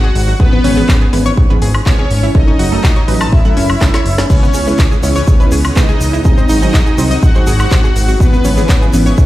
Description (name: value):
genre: progressive house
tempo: 123 BPM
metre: 4/4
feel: straight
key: C# minor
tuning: A4 = 445 Hz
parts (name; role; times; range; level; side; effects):
- soft supersaw; melody; 0.0-8.8 s; B3 to F#5; -19 LUFS; equal; phaser, tape echo
- analog pluck; arpeggios; 0.0-9.1 s; B3 to A5; -20 LUFS; left 1 dB; chorus, sidechain pumping, dub echo
- wide unison pluck; stabs; 0.0-9.1 s; E3 to C#5; -19 LUFS; moving between left 3 dB and right 7 dB; auto-pan, sidechain pumping
- fat analog bass; bass; 0.0-9.3 s; F#1 to G#2; -15 LUFS; equal; sidechain pumping
- deep house drum kit; drums; 0.2-9.0 s; crash cymbal, handclaps, hi-hat, snare drum, woodblock; -21 LUFS; equal; none
- electronic kick drum; drums; 0.4-9.3 s; none; -10 LUFS; equal; none
- lush unison pad; sustained chords; 4.3-9.3 s; C#3 to F#4; -22 LUFS; equal; chorus, sidechain pumping
- tube shaker; percussion; 4.3-9.3 s; none; -30 LUFS; right 1 dB; none
room: little or no reverb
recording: played on a big sound system in a bare room, large studio reverb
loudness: -9 LUFS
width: side -15 dB against mid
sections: 0.0-9.3 A section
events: drum fill 3.8-4.3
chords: 0.4 C#m7/G#; 2.4 F#m; 4.3 C#m7; 6.3 G#7; 8.2 C#m7/G#